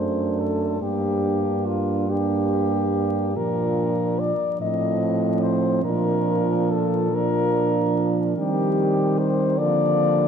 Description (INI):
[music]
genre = classical, lyrical piece for horn quartet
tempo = 48 BPM (dotted quarters)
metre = 6/8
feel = rubato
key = unclear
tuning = A4 = 442 Hz
[part]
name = clear French horn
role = melody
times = 0.0-10.3 s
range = F4 to Eb5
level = -24 LUFS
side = left 4 dB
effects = none
[part]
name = mellow French horn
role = second line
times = 0.0-10.3 s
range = Bb3 to D4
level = -26 LUFS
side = right 9 dB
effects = none
[part]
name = mellow French horn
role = accompaniment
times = 0.0-10.3 s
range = F3 to Bb3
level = -26 LUFS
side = left 1 dB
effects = none
[part]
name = mellow French horn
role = bass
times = 0.0-10.3 s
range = F#2 to Eb3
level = -26 LUFS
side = right 2 dB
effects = none
[sound]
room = wet cathedral reverb, RT60 4.8 s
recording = vinyl crackle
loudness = -20 LUFS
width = side -7 dB against mid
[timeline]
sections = 0.0-10.3 A section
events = none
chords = 0.0 D7/F#; 0.8 Gm; 3.4 Bb; 4.6 F7/A; 5.8 Bb; 8.4 Cm/Eb; 9.6 Bb/D